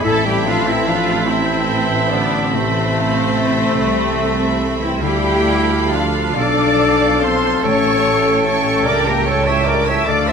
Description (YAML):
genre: classical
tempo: 43-50 BPM (dotted quarters)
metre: 12/8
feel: rubato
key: A minor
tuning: A4 = 440 Hz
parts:
  - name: warm symphonic violin section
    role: melody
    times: 0.0-10.3 s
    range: C5 to E6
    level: -25 LUFS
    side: left 1 dB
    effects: none
  - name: clear oboe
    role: second line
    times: 0.0-10.3 s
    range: E5 to G5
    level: -26 LUFS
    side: right 2 dB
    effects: none
  - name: mellow clarinet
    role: second line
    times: 0.0-10.3 s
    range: A3 to C#5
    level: -24 LUFS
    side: left 2 dB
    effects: none
  - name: mellow hollow silver concert flute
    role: second line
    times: 0.0-10.3 s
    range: A5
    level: -29 LUFS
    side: left 3 dB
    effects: none
  - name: warm symphonic violin section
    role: second line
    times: 0.0-10.3 s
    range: E5 to B5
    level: -26 LUFS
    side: equal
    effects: none
  - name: rich studio viola section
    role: accompaniment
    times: 0.0-10.3 s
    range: F3 to C5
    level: -26 LUFS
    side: right 3 dB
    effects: none
  - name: dark French horn section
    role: sustained chords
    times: 0.0-10.3 s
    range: C3 to E4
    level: -23 LUFS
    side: left 5 dB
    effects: none
  - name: concert harp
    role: arpeggios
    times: 0.0-10.3 s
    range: A2 to E5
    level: -28 LUFS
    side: left 11 dB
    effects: none
  - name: dark trumpet section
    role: stabs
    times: 0.0-10.3 s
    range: A3 to C#5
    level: -22 LUFS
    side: equal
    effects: none
  - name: dark symphonic double bass section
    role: bass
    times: 0.0-10.3 s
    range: A1 to D2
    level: -25 LUFS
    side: right 3 dB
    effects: none
  - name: mellow tuba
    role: bass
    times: 0.0-10.3 s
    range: A1 to D2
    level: -24 LUFS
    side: right 5 dB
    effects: none
  - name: rich symphonic cello section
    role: bass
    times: 0.0-10.3 s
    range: C4 to E5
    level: -21 LUFS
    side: equal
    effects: none
  - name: timpani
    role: percussion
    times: 7.6-8.8 s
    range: A2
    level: -30 LUFS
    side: equal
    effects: none
room: moderate recital hall reverb, RT60 1.6 s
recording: none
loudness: -14 LUFS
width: side -6 dB against mid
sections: 0.0-10.3 A section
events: none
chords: 0.1 Am; 5.0 Dm; 7.6 A7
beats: | 0.05 1.29 2.54 3.79 | 5.01 6.36 7.63 8.86 | 10.07